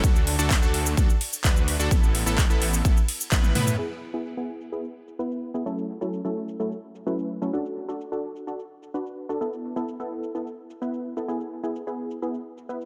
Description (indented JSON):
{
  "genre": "EDM, festival progressive house",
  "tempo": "128 BPM",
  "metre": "4/4",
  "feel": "straight",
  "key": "A major",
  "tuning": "A4 = 441 Hz",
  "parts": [
    { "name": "supersaw stab", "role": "riff", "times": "0.0-12.9 s", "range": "F#3 to B4", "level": "-32 LUFS", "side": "equal", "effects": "sidechain pumping, low-pass filter, tape echo" },
    { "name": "detuned saw bass", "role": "bass", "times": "0.0-3.8 s", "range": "A1 to A2", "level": "-29 LUFS", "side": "equal", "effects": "chorus, sidechain pumping" },
    { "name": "big-room dance drum kit", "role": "drums", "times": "0.0-12.9 s", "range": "cabasa, crash cymbal, handclaps, hi-hat, ride cymbal, toms", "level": "-30 LUFS", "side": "equal", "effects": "low-pass filter on hats, low-pass filter on cymbals, low-pass filter on perc, low-pass filter on snare, low-pass filter on toms" },
    { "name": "electronic kick drum", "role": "drums", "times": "0.0-3.4 s", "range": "none", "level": "-23 LUFS", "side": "equal", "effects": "none" }
  ],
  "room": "light reverb, digital ambience",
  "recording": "none",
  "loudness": "-26 LUFS",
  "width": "mono",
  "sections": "0.0-3.8 A section; 3.8-12.9 B section",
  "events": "drop 0.0-3.8; drum fill 3.3-3.8; band accent 3.3",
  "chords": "0.0 D; 1.9 Asus2; 3.8 E; 5.7 F#m7; 7.5 D; 9.4 Asus2; 11.3 E"
}